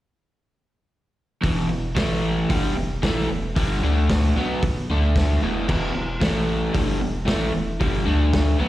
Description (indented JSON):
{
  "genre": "garage rock duo or trio",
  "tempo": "113 BPM",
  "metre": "4/4",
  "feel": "straight",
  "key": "unclear",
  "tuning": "A4 = 441 Hz",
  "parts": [
    { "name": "crunchy overdriven guitar", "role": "riff", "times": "1.4-8.7 s", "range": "E2 to D4", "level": "-23 LUFS", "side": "equal", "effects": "slapback echo" },
    { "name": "pure sine sub bass", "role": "bass", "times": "1.4-8.7 s", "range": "E1 to D2", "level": "-24 LUFS", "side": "equal", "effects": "overdrive" },
    { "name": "vintage drum kit", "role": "drums", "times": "1.4-8.5 s", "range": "crash cymbal, hi-hat, kick drum, snare drum", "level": "-25 LUFS", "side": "equal", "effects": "none" }
  ],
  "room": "small room ambience",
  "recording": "live gig heard through the venue's PA, recital hall reverb",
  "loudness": "-20 LUFS",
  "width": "side -15 dB against mid",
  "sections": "1.4-8.7 A section",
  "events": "none",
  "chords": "1.4 E5; 2.0 A5; 2.5 E5; 3.8 D5; 4.4 E5; 4.9 D5; 5.4 E5; 6.2 A5; 6.7 E5; 8.1 D5",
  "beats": "| 1.44 1.97 2.50 3.03 | 3.56 4.09 4.62 5.15 | 5.67 6.20 6.73 7.26 | 7.79 8.32"
}